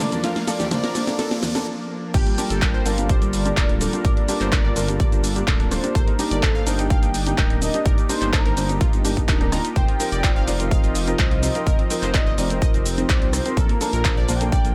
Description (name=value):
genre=progressive house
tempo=126 BPM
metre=4/4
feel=straight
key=G minor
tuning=A4 = 441 Hz
part: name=unison lead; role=melody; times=0.0-14.7 s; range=Bb4 to Bb5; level=-32 LUFS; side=equal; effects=lush chorus, vintage 12-bit sampler grit, delay
part: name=lush unison pad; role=sustained chords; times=0.0-14.7 s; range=F3 to Bb4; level=-34 LUFS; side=equal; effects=chorus, vintage 12-bit sampler grit, sidechain pumping
part: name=analog pluck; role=arpeggios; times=0.0-14.7 s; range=G3 to F5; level=-33 LUFS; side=equal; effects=chorus, sidechain pumping, delay
part: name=felt-muted upright piano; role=stabs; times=0.0-14.7 s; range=Bb3 to D5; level=-29 LUFS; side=equal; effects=sidechain pumping, delay
part: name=dark detuned saw bass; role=bass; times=0.0-14.7 s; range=D1 to C2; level=-28 LUFS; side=equal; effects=sidechain pumping, high-pass filter
part: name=big-room dance drum kit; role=drums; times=0.0-14.7 s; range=cabasa, crash cymbal, handclaps, hi-hat, rim click, snare drum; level=-29 LUFS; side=equal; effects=none
part: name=electronic toms and congas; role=percussion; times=0.0-1.5 s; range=none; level=-33 LUFS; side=equal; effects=sidechain pumping on perc, sidechain pumping on toms
part: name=riser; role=sound effects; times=0.1-1.7 s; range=none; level=-38 LUFS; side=equal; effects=none
part: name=electronic kick drum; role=drums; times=2.1-14.6 s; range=none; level=-22 LUFS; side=equal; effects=none
room=little or no reverb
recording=none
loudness=-21 LUFS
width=mono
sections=0.0-2.1 A section; 2.1-14.7 B section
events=build-up 0.0-2.1; drum fill 0.0-1.7; riser 0.1-1.7; break 1.7-2.1; drop 2.1-14.7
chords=0.0 Bbmaj7; 2.1 Gm7; 6.0 Ebmaj7; 9.8 F7sus4; 13.6 Bbmaj7